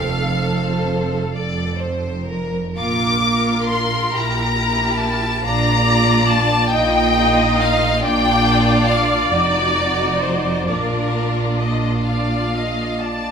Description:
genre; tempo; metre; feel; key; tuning
classical, slow romantic movement for string orchestra; 46 BPM (dotted quarters); 6/8; uneven beats, rubato; Bb major; A4 = 441 Hz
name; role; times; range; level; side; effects
clear symphonic violin section; melody; 0.0-13.3 s; Bb4 to D6; -20 LUFS; left 3 dB; none
rich symphonic viola section; accompaniment; 0.0-13.3 s; A4 to Eb5; -22 LUFS; equal; none
rich symphonic cello section; bass; 0.0-13.3 s; F2 to Bb2; -23 LUFS; right 3 dB; none
rich symphonic double bass section; bass; 0.0-13.3 s; F1 to Bb1; -23 LUFS; right 3 dB; none
clear chamber violin section; second line; 0.4-13.2 s; D4 to D5; -24 LUFS; left 2 dB; none
room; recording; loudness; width
moderate recital hall reverb, RT60 1.6 s; minimal, uncompressed stereo recording; -16 LUFS; side -6 dB against mid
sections
0.0-13.3 A section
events
none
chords
0.0 F; 2.8 Bb; 6.7 Ebadd9/Bb; 8.0 Bb; 9.3 D7#9/E#; 10.7 Bb

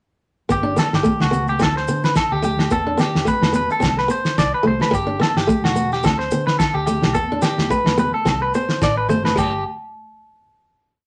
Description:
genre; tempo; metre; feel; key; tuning
highlife guitar band; 108 BPM; 4/4; swing 55% on 16ths; G major; A4 = 440 Hz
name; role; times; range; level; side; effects
fingerpicked steel-string acoustic guitar; accompaniment; 0.5-9.5 s; G3 to D4; -25 LUFS; equal; none
electric guitar at the edge of break-up; arpeggios; 0.5-9.6 s; F#4 to D5; -23 LUFS; equal; none
vintage muted fingered electric bass; bass; 0.5-9.6 s; E1 to D3; -29 LUFS; equal; none
damped 70s drum kit; drums; 0.5-9.5 s; crash cymbal, kick drum, snare drum; -23 LUFS; equal; none
maracas; percussion; 0.5-9.6 s; none; -41 LUFS; equal; none
agogo bells; percussion; 0.8-9.5 s; none; -34 LUFS; equal; none
congas; percussion; 0.8-9.6 s; none; -31 LUFS; equal; none
room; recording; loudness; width
wet studio ambience, RT60 0.5 s; none; -19 LUFS; mono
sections
0.5-9.4 groove; 9.4-11.1 final chord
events
none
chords
0.5 G; 1.6 Dsus4; 2.7 Em; 3.8 Csus2; 4.9 G; 6.0 Dsus4; 7.2 Em; 8.3 Csus2; 9.4 N.C.

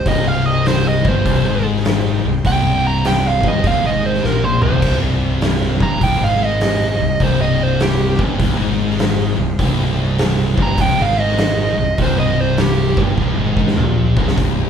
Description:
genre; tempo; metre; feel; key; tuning
stoner and doom metal; 101 BPM; 4/4; swing 65% on 8ths; C minor; A4 = 439 Hz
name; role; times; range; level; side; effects
fuzz lead guitar; melody; 0.0-13.0 s; G4 to Bb5; -19 LUFS; right 3 dB; distortion
bright tonewheel organ; sustained chords; 0.0-14.7 s; C3 to C4; -33 LUFS; left 1 dB; none
thick fuzz guitar; riff; 0.0-14.7 s; C2 to Bb2; -22 LUFS; left 10 dB; distortion
thick fuzz guitar; riff; 0.0-14.7 s; C2 to Bb2; -22 LUFS; right 5 dB; distortion
tight distorted guitar; riff; 0.0-14.4 s; C2 to Bb2; -25 LUFS; equal; distortion
fuzz fingered electric bass; bass; 0.0-14.7 s; C1 to Bb1; -22 LUFS; equal; overdrive
oversized low-tuned drum kit; drums; 0.1-14.6 s; crash cymbal, hi-hat, kick drum, snare drum, toms; -19 LUFS; equal; none
room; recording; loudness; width
moderate large studio reverb, RT60 0.8 s; band playing live in one room; -14 LUFS; side -8 dB against mid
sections
0.0-14.4 A section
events
lead electric guitar solo 0.0-14.4; drum fill 4.2-4.8, 13.2-14.4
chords
0.0 Cm

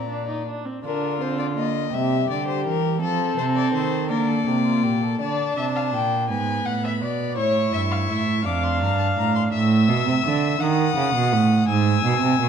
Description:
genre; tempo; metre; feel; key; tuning
classical, baroque-style fugue for string quartet; 56 BPM (dotted quarters); 6/8; straight; Bb major; A4 = 438 Hz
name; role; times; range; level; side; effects
rich violin; melody; 0.0-12.5 s; A4 to E6; -28 LUFS; left 11 dB; none
dark violin; second line; 0.0-12.5 s; F4 to G#5; -26 LUFS; left 3 dB; none
warm viola; accompaniment; 0.0-9.5 s; G3 to E4; -27 LUFS; right 1 dB; none
dark cello; bass; 0.0-12.5 s; F2 to F3; -22 LUFS; right 4 dB; none
room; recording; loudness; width
moderate recital hall reverb, RT60 1.5 s; dark, warm production; -19 LUFS; side -7 dB against mid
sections
0.8-5.2 A section; 5.2-12.5 B section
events
none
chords
0.0 Bb; 0.8 Bb/D; 1.9 C7; 3.0 F; 4.1 Bb; 6.3 E7/G# (rootless); 7.4 A; 8.5 Dm/F; 9.5 A5; 10.6 B7; 11.7 E/G#

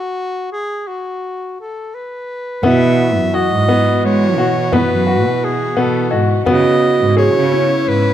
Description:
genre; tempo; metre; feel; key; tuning
contemporary instrumental, chamber music in an uneven meter; 172 BPM (eighths); 11/8; straight; unclear; A4 = 439 Hz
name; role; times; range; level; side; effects
warm soprano saxophone; melody; 0.0-8.1 s; F#4 to E5; -19 LUFS; right 1 dB; none
vibraphone with soft mallets; second line; 2.6-8.1 s; E4 to F#4; -20 LUFS; right 3 dB; none
rich chamber string section; sustained chords; 2.6-8.1 s; C#3 to F#4; -24 LUFS; left 5 dB; none
clear baby grand piano; arpeggios; 2.6-8.1 s; B3 to G#4; -17 LUFS; left 3 dB; none
muted cello; bass; 2.6-8.1 s; F#2 to G#3; -17 LUFS; right 3 dB; none
frame drum; percussion; 2.6-8.0 s; none; -22 LUFS; right 1 dB; none
worn celesta; texture; 3.3-6.8 s; D#5; -27 LUFS; left 7 dB; none
room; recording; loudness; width
light reverb; close, detailed microphones; -12 LUFS; side -11 dB against mid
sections
0.0-2.6 A section; 2.6-8.1 B section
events
stop 0.0-2.6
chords
0.0 N.C.; 2.6 Bsus4; 6.5 C#m7

